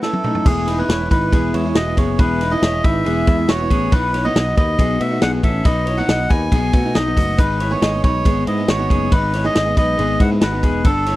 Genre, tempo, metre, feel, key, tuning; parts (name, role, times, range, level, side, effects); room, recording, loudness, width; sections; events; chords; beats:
jangly indie pop; 138 BPM; 4/4; straight; A4 = 440 Hz
melodica; melody; 0.0-11.2 s; G#4 to G#5; -22 LUFS; equal; slapback echo
picked steel-string acoustic guitar; accompaniment; 0.0-11.2 s; G#2 to B4; -25 LUFS; right 3 dB
electric guitar through a small old amp; arpeggios; 0.0-11.2 s; F#3 to D#5; -23 LUFS; left 4 dB
vintage drum kit; drums; 0.0-11.2 s; crash cymbal, hi-hat, kick drum, ride cymbal, snare drum, toms; -17 LUFS; equal
picked electric bass; bass; 0.5-11.2 s; E1 to B2; -21 LUFS; equal
little or no reverb; dry, close 1970s-style studio recording; -14 LUFS; side -16 dB against mid
0.5-11.2 A section
break 0.0-0.5; drum fill 0.0-0.5
0.5 E; 3.9 B; 7.4 G#m
0.02 | 0.46 0.89 1.32 1.76 | 2.19 2.62 3.06 3.49 | 3.92 4.35 4.79 5.22 | 5.65 6.09 6.52 6.95 | 7.38 7.82 8.25 8.69 | 9.12 9.55 9.98 10.42 | 10.85